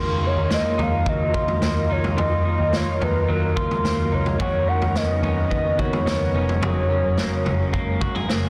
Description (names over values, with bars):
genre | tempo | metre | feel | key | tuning
dream pop | 108 BPM | 4/4 | straight | Eb minor | A4 = 438 Hz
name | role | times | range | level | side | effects
warbly nostalgic lead | melody | 0.0-8.0 s | Bb4 to F#5 | -28 LUFS | equal | chorus, digital delay
ethereal airy pad | sustained chords | 0.2-8.5 s | C#3 to Bb4 | -32 LUFS | equal | ensemble chorus, built-in reverb
electric guitar through a small old amp | arpeggios | 0.0-8.5 s | Eb3 to Ab4 | -30 LUFS | equal | subtle chorus, digital delay
vintage muted picked electric bass | bass | 0.0-8.5 s | F1 to Eb2 | -30 LUFS | equal | none
raw garage drum kit | drums | 0.5-8.4 s | kick drum, snare drum, toms | -26 LUFS | equal | none
room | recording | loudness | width
moderate huge ambient reverb, RT60 5.1 s | dense, heavily limited modern master | -22 LUFS | mono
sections
0.0-8.5 A section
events
none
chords
0.0 Ebmadd9; 4.4 Badd9/D#; 6.6 Gbadd9